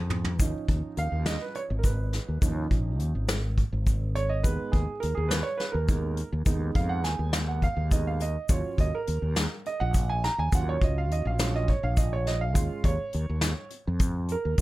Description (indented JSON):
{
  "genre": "progressive instrumental, band music in an uneven meter",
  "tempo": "207 BPM (eighths)",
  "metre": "7/8",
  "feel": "straight",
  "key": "unclear",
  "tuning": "A4 = 440 Hz",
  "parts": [
    { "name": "warm grand piano", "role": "accompaniment", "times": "0.0-14.6 s", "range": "F3 to Bb5", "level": "-32 LUFS", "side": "right 4 dB", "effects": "none" },
    { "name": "fretless electric bass", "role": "bass", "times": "0.0-14.6 s", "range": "Ab1 to F2", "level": "-28 LUFS", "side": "equal", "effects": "analog chorus" },
    { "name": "vintage brush drum kit", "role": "drums", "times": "0.1-14.6 s", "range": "hi-hat, kick drum, snare drum, toms", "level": "-27 LUFS", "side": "equal", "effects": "none" },
    { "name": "tube shaker", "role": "percussion", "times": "0.4-14.6 s", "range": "none", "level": "-40 LUFS", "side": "left 5 dB", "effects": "none" }
  ],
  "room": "light reverb",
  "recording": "none",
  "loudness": "-25 LUFS",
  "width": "side -17 dB against mid",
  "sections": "0.0-14.6 A section",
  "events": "drum fill 0.0-0.4; grand piano solo 0.0-14.6",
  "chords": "0.4 Dbadd9; 4.4 Abm/Eb; 8.5 Ebm7; 12.6 Db69"
}